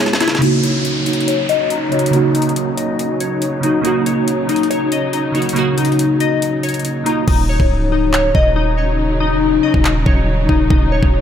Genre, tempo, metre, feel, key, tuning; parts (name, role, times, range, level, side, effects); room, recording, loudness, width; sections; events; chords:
hip hop, trap; 140 BPM; 4/4; half-time; Eb minor; A4 = 439 Hz
glassy digital keys; accompaniment; 0.0-7.3 s; C#3 to G#4; -18 LUFS; right 3 dB; chorus, low-pass filter
warm symphonic string section; sustained chords; 0.0-11.2 s; C#3 to E4; -24 LUFS; equal; low-pass filter
glassy digital keys; arpeggios; 0.0-11.2 s; Eb4 to E5; -18 LUFS; left 6 dB; chorus, phaser, low-pass filter, ping-pong delay
trap drum kit; drums; 0.1-11.1 s; crash cymbal, handclaps, hi-hat, kick drum, snare drum; -18 LUFS; equal
downlifter; sound effects; 0.4-3.8 s; -25 LUFS; equal
hard-hitting 808-style bass; bass; 7.3-11.2 s; Db1 to Eb1; -18 LUFS; equal
light reverb; -13 LUFS; side -9 dB against mid
0.4-7.3 A section; 7.3-11.2 B section
drum fill 0.0-0.4; filter sweep 0.4-7.3; hi-hats muted 7.3-11.2
0.4 Ebm7